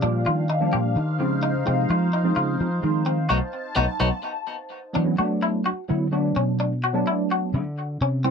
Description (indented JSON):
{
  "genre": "jazz",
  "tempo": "255 BPM (eighths)",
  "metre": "7/8",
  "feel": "straight",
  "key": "unclear",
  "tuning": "A4 = 440 Hz",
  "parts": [
    { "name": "mellow tine electric piano", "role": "accompaniment", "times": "0.0-8.3 s", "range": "F3 to F4", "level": "-25 LUFS", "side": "right 2 dB", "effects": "medium stereo tremolo, ensemble chorus" },
    { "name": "phased analog pad", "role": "sustained chords", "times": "0.0-4.9 s", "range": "D4 to A5", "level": "-30 LUFS", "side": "left 3 dB", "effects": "phaser, chorus" },
    { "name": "clean electric guitar", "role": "stabs", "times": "0.0-8.3 s", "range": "B3 to G4", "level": "-27 LUFS", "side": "left 2 dB", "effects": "wide subtle chorus, tape echo" },
    { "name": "fingered electric bass", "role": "bass", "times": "0.0-8.3 s", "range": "B1 to A3", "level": "-24 LUFS", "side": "equal", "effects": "none" }
  ],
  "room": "light reverb",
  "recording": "none",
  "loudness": "-21 LUFS",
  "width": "side -6 dB against mid",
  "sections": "0.0-5.0 A section; 5.0-8.3 A section",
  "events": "fingered electric bass solo 0.0-8.3; band accent 3.3-5.0",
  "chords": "0.0 Ebmaj9; 1.0 Dbmaj9; 3.3 B7b9; 5.0 E9sus4"
}